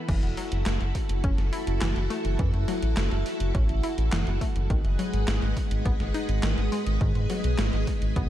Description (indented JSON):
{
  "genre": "synthwave",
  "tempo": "104 BPM",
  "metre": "4/4",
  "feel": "straight",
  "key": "F# minor",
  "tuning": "A4 = 441 Hz",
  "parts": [
    { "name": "string machine, full ensemble", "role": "sustained chords", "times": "0.0-8.3 s", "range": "G#3 to G#5", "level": "-32 LUFS", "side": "equal", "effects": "ensemble chorus, sidechain pumping" },
    { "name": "analog pluck", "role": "arpeggios", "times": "0.0-8.3 s", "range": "D#3 to E4", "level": "-35 LUFS", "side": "left 2 dB", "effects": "chorus, digital delay" },
    { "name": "round analog bass", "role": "bass", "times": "0.1-8.3 s", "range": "E1 to G#2", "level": "-26 LUFS", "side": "equal", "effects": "tube saturation, sidechain pumping" },
    { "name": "electronic kick drum", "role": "drums", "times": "0.1-8.3 s", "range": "none", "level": "-27 LUFS", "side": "equal", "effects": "none" },
    { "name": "gated 80s digital drum machine", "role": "drums", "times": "0.1-8.3 s", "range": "crash cymbal, handclaps, hi-hat, snare drum", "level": "-34 LUFS", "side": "equal", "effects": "gated reverb, gated reverb snare" }
  ],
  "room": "little or no reverb",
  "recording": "dark, warm production",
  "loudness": "-24 LUFS",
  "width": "side -12 dB against mid",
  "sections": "0.1-8.3 A section",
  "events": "none",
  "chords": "0.1 F#m7; 4.7 G#m7",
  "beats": "| 0.09 0.66 1.24 1.82 | 2.39 2.97 3.55 4.12 | 4.70 5.28 5.85 6.43 | 7.01 7.58 8.16"
}